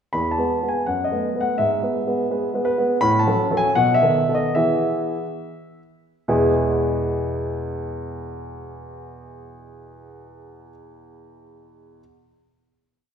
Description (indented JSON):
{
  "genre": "classical-period piano sonatina",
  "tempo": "67-84 BPM",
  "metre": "2/4",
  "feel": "rubato",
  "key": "E major",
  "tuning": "A4 = 437 Hz",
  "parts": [
    { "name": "warm grand piano", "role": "solo", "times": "0.1-12.0 s", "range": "E2 to B5", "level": "-20 LUFS", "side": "equal", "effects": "none" }
  ],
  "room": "wet recital hall reverb, RT60 1.6 s",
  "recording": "minimal, uncompressed stereo recording",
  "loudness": "-19 LUFS",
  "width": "side -8 dB against mid",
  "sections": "0.1-6.3 A section; 6.3-9.8 final chord",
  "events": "slowing down 2.3-6.3",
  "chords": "0.1 E; 0.9 B7/F#; 1.6 E/G#; 3.0 F#m/A; 3.8 B7; 4.5 E"
}